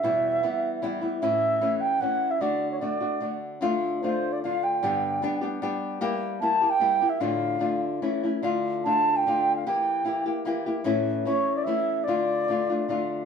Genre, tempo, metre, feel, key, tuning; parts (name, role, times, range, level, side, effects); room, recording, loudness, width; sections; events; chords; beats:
mexican folk; 149 BPM; 3/4; straight; D major, D minor from 3.6 s; A4 = 442 Hz
mellow baroque flute; melody; 0.0-13.1 s; C5 to A5; -24 LUFS; right 2 dB
nylon-string guitar; accompaniment; 0.0-13.3 s; E2 to G4; -27 LUFS; left 2 dB
wet studio reverb, RT60 0.7 s; band playing live in one room; -23 LUFS; side -6 dB against mid
0.0-3.6 A section; 3.6-13.3 B section
0.0 Em; 1.2 A; 2.4 D; 3.6 Dm; 4.8 G; 6.0 Edim/G; 7.2 Dm/A; 8.0 A; 8.4 Dm; 9.7 Edim; 10.9 A; 12.1 Dm
| 0.02 0.42 0.82 | 1.22 1.61 2.01 | 2.41 2.81 3.21 | 3.62 4.02 4.42 | 4.83 5.22 5.62 | 6.02 6.42 6.81 | 7.21 7.62 8.02 | 8.44 8.85 9.25 | 9.65 10.05 10.45 | 10.85 11.26 11.66 | 12.06 12.47 12.88